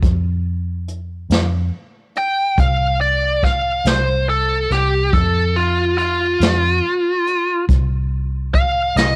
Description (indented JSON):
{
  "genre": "slow blues",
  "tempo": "47 BPM (dotted quarters)",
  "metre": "12/8",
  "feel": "straight",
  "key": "F major",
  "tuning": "A4 = 440 Hz",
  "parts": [
    { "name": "vintage muted fingered electric bass", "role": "bass", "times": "0.0-9.2 s", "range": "C2 to F2", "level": "-22 LUFS", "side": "equal", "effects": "none" },
    { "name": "jazz brush drum kit", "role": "drums", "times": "0.0-9.2 s", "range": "hi-hat, kick drum, snare drum", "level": "-20 LUFS", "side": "equal", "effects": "cassette tape" },
    { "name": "biting lead guitar", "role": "melody", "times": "2.2-9.2 s", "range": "F4 to G5", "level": "-20 LUFS", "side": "equal", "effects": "overdrive, cassette tape" }
  ],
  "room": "small room reverb",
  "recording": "home recording on cassette",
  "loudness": "-18 LUFS",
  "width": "mono",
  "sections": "0.0-9.2 A section",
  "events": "lead electric guitar solo 0.0-9.2",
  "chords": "0.0 F5"
}